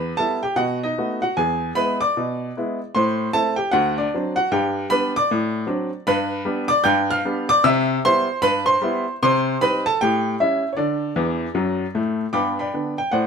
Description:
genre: jazz, stride piano.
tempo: 153 BPM.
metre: 4/4.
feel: swing 62% on 8ths.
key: G major.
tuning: A4 = 441 Hz.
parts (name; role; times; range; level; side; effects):
clear upright piano; solo; 0.0-13.3 s; D2 to G6; -18 LUFS; equal; none.
room: moderate studio reverb, RT60 0.8 s.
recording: none.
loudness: -18 LUFS.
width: side -6 dB against mid.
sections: 0.0-12.3 A section.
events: upright piano fill 11.2-12.3.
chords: 0.0 Em; 0.6 B7; 1.4 E7; 2.9 Am; 3.7 D7; 4.5 G; 5.3 D7/A; 6.1 G; 6.8 G7; 7.6 Cmaj7; 9.2 Cm; 10.0 A7; 10.8 Dsus2; 11.6 D; 12.3 G.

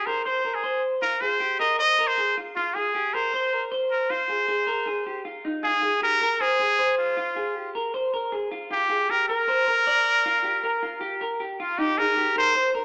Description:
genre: indie pop.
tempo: 156 BPM.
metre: 4/4.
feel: straight.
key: unclear.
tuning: A4 = 438 Hz.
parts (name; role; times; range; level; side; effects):
trumpet with straight mute; melody; 0.0-12.7 s; F4 to Eb5; -25 LUFS; equal; none.
electric guitar through a small old amp; arpeggios; 0.0-12.8 s; Eb4 to D5; -30 LUFS; equal; spring reverb.
room: moderate stone room reverb, RT60 1.2 s.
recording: band playing live in one room, small speaker sound.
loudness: -24 LUFS.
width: mono.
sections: 0.0-5.6 A section; 5.6-11.8 B section; 11.8-12.8 C section.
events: none.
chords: 0.0 Ab6; 2.6 Fm; 8.5 Gm7; 11.8 Cm7.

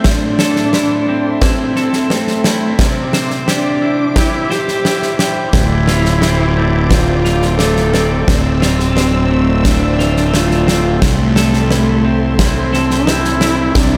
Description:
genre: post-rock.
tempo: 88 BPM.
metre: 4/4.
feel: straight.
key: D minor.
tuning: A4 = 440 Hz.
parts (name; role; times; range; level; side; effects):
muted studio string section; sustained chords; 0.0-14.0 s; C4 to E6; -28 LUFS; equal; none.
electric guitar at the edge of break-up; arpeggios; 0.0-14.0 s; D2 to C5; -22 LUFS; equal; analog delay.
huge arena drum kit; drums; 0.0-13.9 s; kick drum, snare drum; -19 LUFS; equal; none.
dark cello; melody; 0.1-14.0 s; A3 to A4; -19 LUFS; equal; analog delay.
fuzz fingered electric bass; bass; 5.5-14.0 s; D1 to C2; -18 LUFS; equal; overdrive.
room: moderate cathedral reverb, RT60 5.0 s.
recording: dreamy mix soaked in reverb.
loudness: -14 LUFS.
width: mono.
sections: 0.0-14.0 A section.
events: none.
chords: 0.1 Am; 2.8 Cadd9; 5.5 Dm7; 11.0 Am/C.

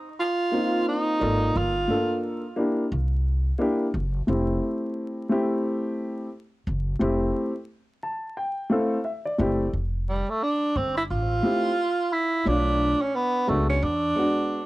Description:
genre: hip hop.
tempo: 88 BPM.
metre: 4/4.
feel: swing 59% on 16ths.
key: F major.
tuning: A4 = 441 Hz.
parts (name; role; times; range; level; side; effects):
breathy tenor saxophone; melody; 0.2-2.2, 10.1-14.7 s; G3 to F4; -24 LUFS; right 2 dB; analog delay.
dark concert grand piano; accompaniment; 0.5-14.6 s; Ab3 to A5; -25 LUFS; left 1 dB; none.
upright bass; bass; 1.2-14.1 s; F1 to E2; -26 LUFS; equal; transformer saturation.
room: little or no reverb.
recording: dry, gritty hardware recording, vinyl crackle.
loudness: -23 LUFS.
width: side -18 dB against mid.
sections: 0.0-9.7 A section; 9.7-14.7 B section.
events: grand piano fill 7.7-9.7; tenor saxophone solo 9.7-14.7.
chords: 0.0 Ab; 1.6 Gm7; 2.9 C7; 4.3 Fmaj7; 12.5 Bm7b5; 13.8 E7.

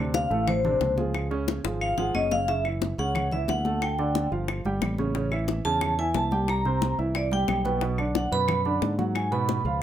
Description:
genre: Afro-Cuban jazz.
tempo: 180 BPM.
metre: 4/4.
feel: straight.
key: unclear.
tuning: A4 = 440 Hz.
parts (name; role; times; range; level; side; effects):
dark grand piano; accompaniment; 0.0-9.8 s; A2 to A5; -29 LUFS; right 3 dB; none.
fingered electric bass; bass; 0.0-9.8 s; F#1 to G#2; -29 LUFS; equal; none.
vibraphone with medium hard mallets; melody; 0.1-9.8 s; C5 to B5; -27 LUFS; equal; none.
bongos; percussion; 0.1-9.7 s; none; -33 LUFS; left 10 dB; none.
congas; percussion; 0.1-9.8 s; none; -34 LUFS; left 3 dB; none.
claves; percussion; 0.5-9.3 s; none; -36 LUFS; left 2 dB; none.
room: light reverb.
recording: none.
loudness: -23 LUFS.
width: side -11 dB against mid.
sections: 0.0-2.5 A section; 2.5-9.8 A section.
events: vibraphone solo 0.0-9.8; drum fill 1.5-2.5.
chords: 0.0 Dm7; 1.1 C#; 2.5 F#m7; 3.8 Dm; 4.5 Gsus2; 5.2 A; 6.5 C7; 7.8 Bm; 9.2 G#m7.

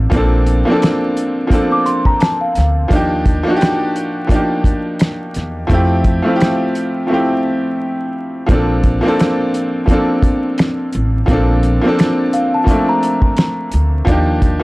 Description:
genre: lo-fi hip hop.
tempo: 86 BPM.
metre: 4/4.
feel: swing 58% on 16ths.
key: Bb major.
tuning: A4 = 440 Hz.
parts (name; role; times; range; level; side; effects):
bright upright piano; accompaniment; 0.0-14.6 s; F3 to A4; -16 LUFS; equal; none.
upright bass; bass; 0.0-14.6 s; A1 to F2; -16 LUFS; equal; none.
cloth-damped thuddy drum kit; drums; 0.1-14.6 s; finger snaps, hi-hat, kick drum, snare drum; -15 LUFS; equal; none.
celesta; second line; 1.7-2.9, 12.3-13.9 s; F5 to D6; -18 LUFS; left 1 dB; tape echo.
room: light reverb.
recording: dry, gritty hardware recording, transformer saturation, vinyl crackle.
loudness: -13 LUFS.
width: side -21 dB against mid.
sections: 0.0-14.6 A section.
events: break 7.1-8.5.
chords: 0.0 Bbmaj9; 2.9 Ebmaj9; 5.7 Fmaj9; 8.5 Bbmaj9; 14.1 Ebmaj9.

